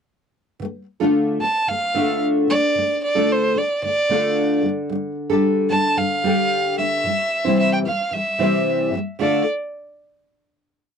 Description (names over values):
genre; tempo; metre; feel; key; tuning
acoustic pop; 112 BPM; 4/4; straight; D minor; A4 = 440 Hz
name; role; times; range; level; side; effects
nylon-string guitar; accompaniment; 0.6-9.4 s; C3 to C5; -20 LUFS; left 1 dB; double-tracked left and right
dark violin; melody; 1.4-9.5 s; C5 to A5; -20 LUFS; right 2 dB; none
room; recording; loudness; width
light reverb; dry, close 1970s-style studio recording; -17 LUFS; side -6 dB against mid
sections
0.6-9.2 verse; 9.2-11.0 final chord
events
none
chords
0.6 Dm; 4.6 Gsus2; 7.0 C; 9.2 Dm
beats
| 0.60 1.14 1.68 2.22 | 2.75 3.29 3.83 4.37 | 4.90 5.44 5.97 6.51 | 7.05 7.58 8.12 8.66 | 9.20